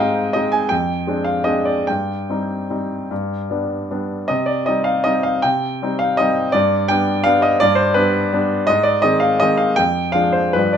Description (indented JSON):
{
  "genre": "classical, piano waltz",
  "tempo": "136-177 BPM",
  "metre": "3/4",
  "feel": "rubato",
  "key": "C minor",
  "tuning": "A4 = 441 Hz",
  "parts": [
    { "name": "bright concert grand piano", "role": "solo", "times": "0.0-10.8 s", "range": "F2 to Ab5", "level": "-16 LUFS", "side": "equal", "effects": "none" }
  ],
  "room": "light reverb",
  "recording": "minimal, uncompressed stereo recording",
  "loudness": "-16 LUFS",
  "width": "side -8 dB against mid",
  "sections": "0.0-10.8 A section",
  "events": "none",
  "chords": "0.0 Ab; 0.7 Dm7b5/F; 1.9 Cm/G; 3.1 G; 4.3 Cm; 6.5 G; 8.7 Ab; 9.8 Ddim/F",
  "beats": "0.35 | 0.71 1.07 1.46 | 1.88 2.29 2.70 | 3.10 3.51 3.92 | 4.30 4.68 5.06 | 5.44 5.82 6.19 | 6.54 6.90 7.26 | 7.61 7.95 8.32 | 8.68 9.04 9.41 | 9.77 10.14 10.55"
}